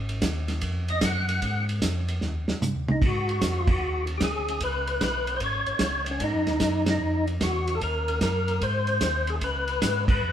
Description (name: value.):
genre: soul jazz organ trio.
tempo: 150 BPM.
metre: 4/4.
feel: swing 66% on 8ths.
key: unclear.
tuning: A4 = 440 Hz.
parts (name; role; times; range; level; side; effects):
mellow tonewheel organ; bass; 0.0-10.3 s; Ab1 to Ab2; -29 LUFS; equal; chorus vibrato, slow rotary speaker.
warm soul drum kit; drums; 0.1-10.1 s; crash cymbal, hi-hat, kick drum, ride cymbal, snare drum, toms; -28 LUFS; right 1 dB; none.
percussive tonewheel organ; melody; 0.9-10.3 s; Db4 to Gb5; -27 LUFS; left 1 dB; slow rotary speaker, overdrive, chorus vibrato.
room: wet studio reverb, RT60 0.8 s.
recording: band playing live in one room.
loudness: -23 LUFS.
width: side -10 dB against mid.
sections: 0.0-3.0 A section; 3.0-10.3 B section.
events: tonewheel organ solo 0.0-3.0; drum fill 2.2-3.0; band accent 3.6, 6.8, 10.0.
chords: 0.0 Ab5; 0.6 Ebmadd9/F; 1.4 Fm; 2.2 Eb7; 3.0 Ab5; 4.6 Db5; 6.2 Ab5; 7.8 Ebm; 8.6 Ab; 9.4 Db7.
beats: 0.22 0.61 1.01 | 1.41 1.81 2.21 2.61 | 3.01 3.40 3.80 4.20 | 4.60 5.00 5.40 5.80 | 6.21 6.61 7.01 7.41 | 7.81 8.21 8.61 9.01 | 9.41 9.81 10.21.